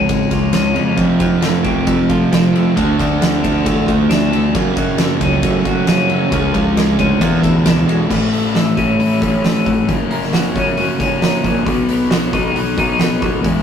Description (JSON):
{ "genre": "quiet-loud alternative rock", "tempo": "135 BPM", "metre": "4/4", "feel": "straight", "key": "A lydian from 8.1 s", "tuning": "A4 = 440 Hz", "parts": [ { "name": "twelve-string electric guitar", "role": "arpeggios", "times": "0.0-13.6 s", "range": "E2 to F#4", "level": "-20 LUFS", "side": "equal", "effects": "tremolo" }, { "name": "fuzz guitar", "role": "riff", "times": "0.0-13.6 s", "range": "E2 to E4", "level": "-18 LUFS", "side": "left 2 dB", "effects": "distortion" }, { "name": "overdriven picked electric bass", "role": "bass", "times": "0.0-13.6 s", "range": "F#1 to F#3", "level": "-22 LUFS", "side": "equal", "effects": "none" }, { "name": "oversized low-tuned drum kit", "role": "drums", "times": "0.1-13.5 s", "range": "crash cymbal, hi-hat, kick drum, ride cymbal, snare drum", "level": "-19 LUFS", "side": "right 1 dB", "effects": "none" }, { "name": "fuzz guitar", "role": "riff", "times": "1.0-8.1 s", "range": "E2 to D4", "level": "-19 LUFS", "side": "right 6 dB", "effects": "distortion" } ], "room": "moderate small room reverb, RT60 0.6 s", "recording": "rough rehearsal-room recording, tube saturation", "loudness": "-13 LUFS", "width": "side -8 dB against mid", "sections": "0.0-8.1 A section; 8.1-13.6 B section", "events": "none", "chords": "0.0 C#; 1.0 F; 2.8 Dm; 4.5 F#m; 6.3 C#; 7.2 E7; 8.1 A; 9.9 F#; 11.7 B" }